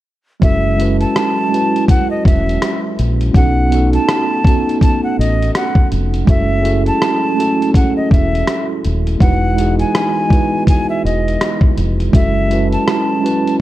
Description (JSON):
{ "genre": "lo-fi hip hop", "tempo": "82 BPM", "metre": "4/4", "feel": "swing 58% on 16ths", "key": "F# dorian", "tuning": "A4 = 440 Hz", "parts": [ { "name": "breathy bright concert flute", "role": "melody", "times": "0.4-13.6 s", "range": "D#5 to A5", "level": "-20 LUFS", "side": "equal", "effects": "none" }, { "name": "mellow tine electric piano", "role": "accompaniment", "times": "0.4-13.6 s", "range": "G#3 to B4", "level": "-18 LUFS", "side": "right 2 dB", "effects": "medium stereo tremolo" }, { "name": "dark analog pad", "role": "sustained chords", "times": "0.4-13.6 s", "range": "E3 to A5", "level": "-24 LUFS", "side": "equal", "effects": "wide subtle chorus" }, { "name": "deep dub fingered electric bass", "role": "bass", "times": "0.4-12.8 s", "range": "D#1 to B1", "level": "-16 LUFS", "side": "equal", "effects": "none" }, { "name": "dusty soul sampler-style drum kit", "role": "drums", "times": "0.4-13.6 s", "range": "hi-hat, kick drum, rim click", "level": "-14 LUFS", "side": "equal", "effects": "none" } ], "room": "digital ambience", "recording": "none", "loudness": "-12 LUFS", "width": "side -15 dB against mid", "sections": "0.4-13.6 A section", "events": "none", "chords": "0.4 F#m7; 3.3 B7; 6.3 F#m7; 9.2 Emaj7; 12.1 F#m7" }